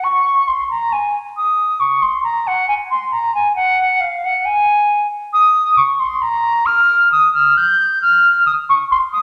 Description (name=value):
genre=classical, baroque-style fantasia for unaccompanied flute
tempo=68 BPM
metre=3/4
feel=rubato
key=unclear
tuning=A4 = 440 Hz
part: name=silver concert flute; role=solo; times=0.0-9.2 s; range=F5 to G6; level=-15 LUFS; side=equal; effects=none
room=wet recital hall reverb, RT60 1.6 s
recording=none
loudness=-15 LUFS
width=mono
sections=0.0-9.2 A section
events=none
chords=none